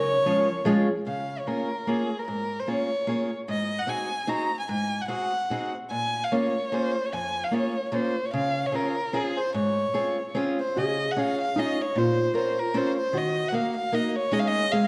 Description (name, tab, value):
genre	musette waltz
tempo	149 BPM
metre	3/4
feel	swing 54% on 8ths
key	Db major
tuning	A4 = 440 Hz
part	warm violin	melody	0.0-14.9 s	Ab4 to Bb5	-30 LUFS	equal	none
part	hollow-body jazz guitar	second line	0.0-1.0, 10.8-14.9 s	Eb4 to Bb4	-32 LUFS	equal	none
part	picked old ladder-braced acoustic guitar	accompaniment	0.0-14.9 s	F2 to Bb4	-30 LUFS	equal	none
room	wet recital hall reverb, RT60 1.5 s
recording	dark, warm production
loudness	-27 LUFS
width	mono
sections	0.0-1.1 A section; 1.1-10.8 B section; 10.8-14.9 A section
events	none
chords	0.0 Db; 1.1 Db6; 3.5 Ab7; 5.9 Bbm7; 8.3 Dbmaj7; 10.8 Dbadd9; 12.0 Bbmadd9; 13.1 Ebm; 14.3 Absus4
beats	0.26 0.66 | 1.06 1.47 1.88 | 2.28 2.68 3.08 | 3.48 3.88 4.29 | 4.69 5.10 5.51 | 5.92 6.32 6.73 | 7.13 7.53 7.93 | 8.34 8.74 9.14 | 9.54 9.95 10.36 | 10.77 11.17 11.57 | 11.96 12.36 12.75 | 13.14 13.54 13.93 | 14.32 14.72